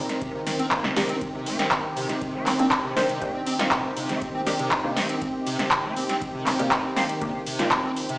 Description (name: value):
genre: acid house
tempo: 120 BPM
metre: 4/4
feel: straight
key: C minor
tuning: A4 = 440 Hz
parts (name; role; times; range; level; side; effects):
- warm analog pad; sustained chords; 0.0-8.2 s; Eb3 to Bb4; -28 LUFS; equal; chorus, sidechain pumping
- electro analog drum machine; drums; 0.1-8.2 s; handclaps, hi-hat, ride cymbal, snare drum; -25 LUFS; equal; none
- acid bass, square; riff; 0.2-8.2 s; C3 to C4; -32 LUFS; equal; overdrive, ensemble chorus, cassette tape, sidechain pumping, analog delay
- electronic kick drum; drums; 0.2-7.8 s; none; -40 LUFS; equal; none
- filtered dub chord stab; stabs; 1.0-7.7 s; Bb3 to C5; -28 LUFS; equal; phaser, lush chorus, cassette tape, analog delay
room: moderate small room reverb, RT60 0.5 s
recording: played on a big sound system in a bare room, stone room reverb, small speaker sound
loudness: -22 LUFS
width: side -22 dB against mid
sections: 0.0-8.2 A section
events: none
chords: 0.0 Cm7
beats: 0.21 0.71 | 1.22 1.72 2.21 2.71 | 3.21 3.71 4.21 4.71 | 5.21 5.71 6.21 6.71 | 7.21 7.71